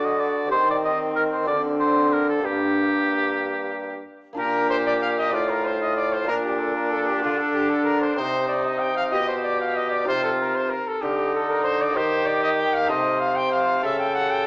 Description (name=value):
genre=classical, baroque-style sonata movement with continuo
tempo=63 BPM (dotted quarters)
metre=6/8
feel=straight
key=G minor, Bb major from 4.4 s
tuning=A4 = 440 Hz
part: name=clear trumpet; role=melody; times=0.0-14.5 s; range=Bb3 to G5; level=-26 LUFS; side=left 1 dB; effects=none
part: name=clear oboe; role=second line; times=0.0-14.5 s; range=D4 to Eb5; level=-25 LUFS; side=equal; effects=none
part: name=lute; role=accompaniment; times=0.0-14.5 s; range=G2 to A4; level=-29 LUFS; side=equal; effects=none
part: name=clear bassoon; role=bass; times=0.0-14.5 s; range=G2 to Eb3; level=-25 LUFS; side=equal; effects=none
room=moderate recital hall reverb, RT60 1.6 s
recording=small speaker sound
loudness=-20 LUFS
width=side -27 dB against mid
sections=0.0-4.4 A section; 4.4-14.5 A section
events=none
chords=0.0 D; 0.5 Cm/Eb; 1.5 D7; 2.4 Gm; 4.4 Bb; 5.3 F7/A; 6.3 Bb; 8.2 Cm; 9.1 G7/B; 10.1 Cm; 12.0 Eb; 12.9 Adim/C; 13.8 A7/C#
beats=| 0.52 1.48 | 2.44 3.41 | 4.38 5.33 | 6.29 7.24 | 8.19 9.13 | 10.08 11.02 | 11.96 12.90 | 13.84